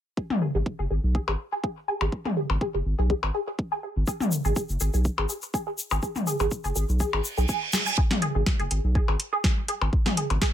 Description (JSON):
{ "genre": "minimal techno", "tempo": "123 BPM", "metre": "4/4", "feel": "swing 54% on 16ths", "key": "G# minor", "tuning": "A4 = 440 Hz", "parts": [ { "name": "resonant blip pluck", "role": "riff", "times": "0.2-10.5 s", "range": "G#4 to G#5", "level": "-30 LUFS", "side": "right 1 dB", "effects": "phaser, ensemble chorus, sidechain pumping, dub echo" }, { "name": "electronic kick drum", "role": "drums", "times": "0.2-10.5 s", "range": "none", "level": "-26 LUFS", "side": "equal", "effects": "high-pass filter on kick" }, { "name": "electronic toms and percussion blips", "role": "percussion", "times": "0.3-10.4 s", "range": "none", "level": "-29 LUFS", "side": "left 2 dB", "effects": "dub echo" }, { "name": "saturated sub bass", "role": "bass", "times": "0.5-10.4 s", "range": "F#1 to B1", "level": "-25 LUFS", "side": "equal", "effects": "sidechain pumping" }, { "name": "tube shaker", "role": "percussion", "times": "4.1-8.0 s", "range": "none", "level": "-34 LUFS", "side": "left 3 dB", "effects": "none" }, { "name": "reverse cymbal", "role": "sound effects", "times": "7.2-8.0 s", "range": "none", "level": "-29 LUFS", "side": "right 6 dB", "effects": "none" }, { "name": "booming analog drum machine", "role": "drums", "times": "7.7-10.5 s", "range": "hi-hat, snare drum", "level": "-27 LUFS", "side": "equal", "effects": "none" } ], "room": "little or no reverb", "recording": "none", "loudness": "-24 LUFS", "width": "side -10 dB against mid", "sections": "0.2-8.0 A section; 8.0-10.5 B section", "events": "reverse cymbal 7.2-8.0; drum fill 7.7", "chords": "none" }